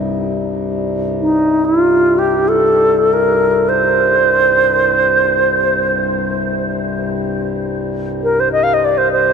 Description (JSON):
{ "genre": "world meditative, free-time meditation music", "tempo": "free time", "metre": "none", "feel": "none", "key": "C dorian", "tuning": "A4 = 440 Hz", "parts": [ { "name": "hand-pumped harmonium", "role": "drone", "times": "0.0-9.3 s", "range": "C2 to G2", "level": "-20 LUFS", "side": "left 2 dB", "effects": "none" }, { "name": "bright reedy alto flute", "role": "melody", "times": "1.2-9.3 s", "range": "Eb4 to F5", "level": "-13 LUFS", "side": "right 1 dB", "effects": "tape echo" } ], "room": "wet huge ambient reverb, RT60 7.6 s", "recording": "dark, warm production", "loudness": "-12 LUFS", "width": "side -6 dB against mid", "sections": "0.0-9.3 A section", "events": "none", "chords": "none" }